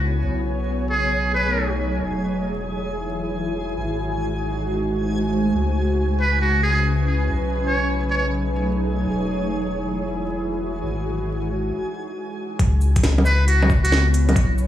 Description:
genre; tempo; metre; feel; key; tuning
future garage; 136 BPM; 4/4; swing 67% on 16ths; C# minor; A4 = 445 Hz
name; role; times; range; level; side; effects
ethereal airy pad; sustained chords; 0.0-14.7 s; B2 to C#5; -24 LUFS; equal; ensemble chorus, built-in reverb, sidechain pumping
warm sub bass; bass; 0.0-14.7 s; E1 to C#2; -23 LUFS; equal; sidechain pumping
backwards swelling texture; texture; 0.0-11.7 s; G#4 to G#5; -34 LUFS; equal; built-in reverb
trumpet with metal mute; melody; 0.9-1.7, 6.2-8.3, 13.3-14.1 s; F#4 to C#5; -24 LUFS; right 2 dB; tape echo
electronic kick drum; drums; 12.6-14.5 s; none; -19 LUFS; equal; none
organic electronic drum kit; drums; 12.6-14.7 s; bongos, cabasa, hi-hat, snare drum; -23 LUFS; right 1 dB; overdrive
room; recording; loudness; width
light reverb, digital ambience; dry, gritty hardware recording, vinyl crackle, studio reverb; -19 LUFS; side -12 dB against mid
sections
0.0-12.6 A section; 12.6-14.7 B section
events
break 11.7-12.6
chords
0.2 B13; 2.0 E69; 3.8 G#7b9; 5.5 C#m7; 7.3 B13; 9.1 E69; 10.8 G#7(no3); 12.6 C#m7

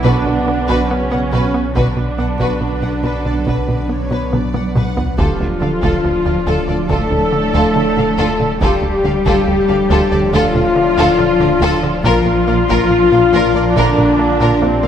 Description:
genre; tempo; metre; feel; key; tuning
cinematic, hybrid orchestral and electronic film score; 70 BPM; 4/4; straight; unclear; A4 = 440 Hz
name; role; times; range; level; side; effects
warm symphonic violin section; melody; 0.0-14.9 s; A4 to F#5; -25 LUFS; left 3 dB; none
warm symphonic violin section; second line; 0.0-14.9 s; F4 to F#5; -24 LUFS; left 1 dB; none
warm symphonic viola section; accompaniment; 0.0-14.9 s; C4 to A4; -21 LUFS; right 2 dB; none
dark French horn section; sustained chords; 0.0-14.9 s; C4 to A4; -18 LUFS; left 6 dB; none
dark trombone section; sustained chords; 0.0-14.9 s; F#2 to D4; -24 LUFS; right 2 dB; none
ethereal airy pad; sustained chords; 0.0-14.9 s; F3 to D5; -25 LUFS; right 1 dB; ensemble chorus, built-in reverb, tremolo
tight sequencer bass; riff; 0.0-14.9 s; D2 to B3; -21 LUFS; right 2 dB; none
dark chamber double bass section; bass; 0.0-14.9 s; Bb1 to D2; -23 LUFS; right 2 dB; none
dark symphonic cello section; bass; 0.0-14.9 s; C3 to A3; -22 LUFS; right 2 dB; none
punchy sub bass; bass; 0.0-14.9 s; D1 to B1; -25 LUFS; equal; none
taiko ensemble; drums; 0.0-14.9 s; none; -23 LUFS; equal; none
felt-muted upright piano; texture; 0.0-14.9 s; G4 to Bb4; -30 LUFS; right 1 dB; none
room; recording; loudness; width
moderate scoring stage reverb, RT60 1.9 s; none; -12 LUFS; side -9 dB against mid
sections
0.0-14.9 A section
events
drum fill 4.3-5.2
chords
0.0 Bm; 5.2 Dm; 12.0 Bb

